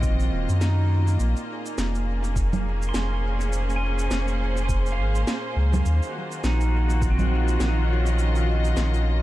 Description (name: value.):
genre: ambient dub.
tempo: 103 BPM.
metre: 4/4.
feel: swing 58% on 16ths.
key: Bb minor.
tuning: A4 = 440 Hz.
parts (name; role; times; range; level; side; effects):
clear symphonic string section; sustained chords; 0.0-9.2 s; Bb2 to Eb5; -29 LUFS; left 1 dB; none.
pedal steel guitar; arpeggios; 0.0-9.2 s; C4 to C6; -33 LUFS; right 4 dB; tape echo.
warm sub bass; bass; 0.0-9.2 s; Eb1 to Gb2; -22 LUFS; equal; none.
electronic kick drum; drums; 0.0-7.2 s; none; -27 LUFS; equal; studio reverb.
electronic shaker, snare drum and congas; drums; 0.0-9.0 s; none; -32 LUFS; right 2 dB; studio reverb, dub echo.
room: little or no reverb.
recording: none.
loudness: -21 LUFS.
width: side -16 dB against mid.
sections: 0.0-1.2 A section; 1.2-9.2 B section.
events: band accent 0.6.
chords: 0.0 Ebmadd9; 1.2 Bbm7; 5.9 Ebmadd9.